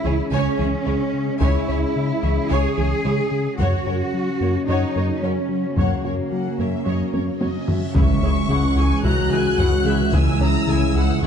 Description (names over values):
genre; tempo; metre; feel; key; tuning
cinematic, hybrid orchestral and electronic film score; 110 BPM; 4/4; straight; C# dorian; A4 = 440 Hz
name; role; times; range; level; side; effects
rich symphonic violin section; melody; 0.0-11.3 s; A#4 to F#6; -30 LUFS; left 4 dB; none
rich symphonic viola section; accompaniment; 0.0-11.3 s; E4 to C#5; -33 LUFS; right 3 dB; none
mellow French horn section; sustained chords; 0.0-11.3 s; F#3 to F#4; -26 LUFS; left 6 dB; none
warbly tape-like pad; sustained chords; 0.0-11.3 s; C#3 to C#5; -30 LUFS; equal; chorus, built-in reverb
soft round pluck; arpeggios; 0.0-11.3 s; C#3 to F#4; -31 LUFS; right 4 dB; none
smooth synth bass; riff; 0.0-11.3 s; C#2 to F#3; -24 LUFS; left 2 dB; none
rich symphonic cello section; bass; 0.0-11.3 s; C#2 to G#4; -26 LUFS; right 4 dB; none
rich symphonic double bass section; bass; 0.0-11.3 s; C#2 to F#2; -25 LUFS; right 5 dB; none
rich symphonic violin section; second line; 0.1-11.3 s; E4 to A#5; -31 LUFS; left 2 dB; none
solo taiko drums; drums; 1.4-11.3 s; none; -25 LUFS; equal; none
reverse cymbal and impact; sound effects; 7.9-10.1 s; none; -26 LUFS; equal; none
room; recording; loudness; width
moderate scoring stage reverb, RT60 1.6 s; dark, warm production, nothing above 10.9 kHz; -18 LUFS; side -7 dB against mid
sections
0.0-8.0 A section; 8.0-11.3 B section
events
drum fill 7.1-8.0; reverse cymbal 7.9; impact 8.0-10.1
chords
0.0 C#m; 3.6 F#; 8.0 C#m